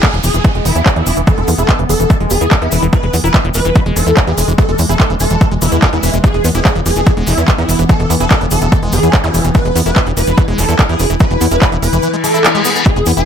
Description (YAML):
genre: psychedelic trance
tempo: 145 BPM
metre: 4/4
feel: straight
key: E major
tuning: A4 = 440 Hz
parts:
  - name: swarming rave lead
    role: melody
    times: 0.0-13.3 s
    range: E4 to B4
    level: -18 LUFS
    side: equal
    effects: chorus, phaser, sidechain pumping, digital delay
  - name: evolving wavetable pad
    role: sustained chords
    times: 0.2-13.3 s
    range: E3 to E4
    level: -21 LUFS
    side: left 1 dB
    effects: chorus, built-in reverb, sidechain pumping
  - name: liquid acid bass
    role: riff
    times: 0.0-13.2 s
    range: D3 to F4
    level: -21 LUFS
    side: moving between left 5 dB and right 6 dB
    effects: phaser, auto-pan, sidechain pumping, digital delay
  - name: electronic kick drum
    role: drums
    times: 0.0-12.9 s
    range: none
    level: -11 LUFS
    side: equal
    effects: none
  - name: techno drum kit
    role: drums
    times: 0.0-13.3 s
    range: handclaps, hi-hat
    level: -18 LUFS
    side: right 1 dB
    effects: none
  - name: cabasa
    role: percussion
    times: 0.0-13.3 s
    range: none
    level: -25 LUFS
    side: left 3 dB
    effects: none
  - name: downlifter, zap and reverse cymbal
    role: sound effects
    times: 0.0-2.9, 9.2-9.3, 12.2-12.9 s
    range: none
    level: -22 LUFS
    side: left 2 dB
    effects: none
  - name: tight sequencer bass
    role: bass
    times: 0.1-13.2 s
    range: E1 to E2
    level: -15 LUFS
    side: equal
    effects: none
  - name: vowel-sweep wobble bass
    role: second line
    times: 0.7-13.2 s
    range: E3 to B3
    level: -32 LUFS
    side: right 3 dB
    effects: none
room: light reverb, digital ambience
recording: none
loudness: -10 LUFS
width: side -8 dB against mid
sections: 0.0-13.3 A section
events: kick drops out 12.0-12.9; reverse cymbal 12.2-12.9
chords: 0.0 E5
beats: 0.03 0.45 0.86 | 1.27 1.69 2.10 2.51 | 2.93 3.34 3.75 4.17 | 4.58 5.00 5.41 5.82 | 6.24 6.65 7.07 7.48 | 7.89 8.31 8.72 9.13 | 9.55 9.96 10.38 10.79 | 11.20 11.62 12.03 12.45 | 12.86